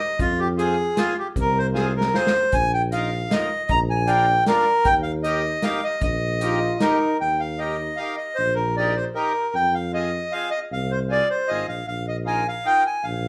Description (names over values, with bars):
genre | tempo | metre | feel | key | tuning
alpine folk, alpine dance band | 154 BPM | 3/4 | straight | Eb major | A4 = 440 Hz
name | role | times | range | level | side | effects
accordion | melody | 0.0-13.3 s | F4 to Bb5 | -24 LUFS | equal | none
mellow tuba | bass | 0.2-13.3 s | Ab1 to F2 | -29 LUFS | equal | none
natural country drum kit | drums | 0.2-6.9 s | hi-hat, kick drum, snare drum | -29 LUFS | equal | none
accordion | accompaniment | 0.6-12.8 s | C4 to Bb4 | -32 LUFS | equal | none
dark trumpet | second line | 6.4-7.2 s | Eb4 to F4 | -26 LUFS | equal | none
room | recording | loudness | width
moderate large studio reverb, RT60 0.8 s | band playing live in one room | -22 LUFS | mono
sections
0.0-7.2 A section; 7.2-13.3 A section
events
drum fill 1.8-2.5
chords
0.2 Fm; 2.5 Bbsus4; 3.7 Bb6; 4.9 Eb; 9.5 Fm; 11.9 Bbsus4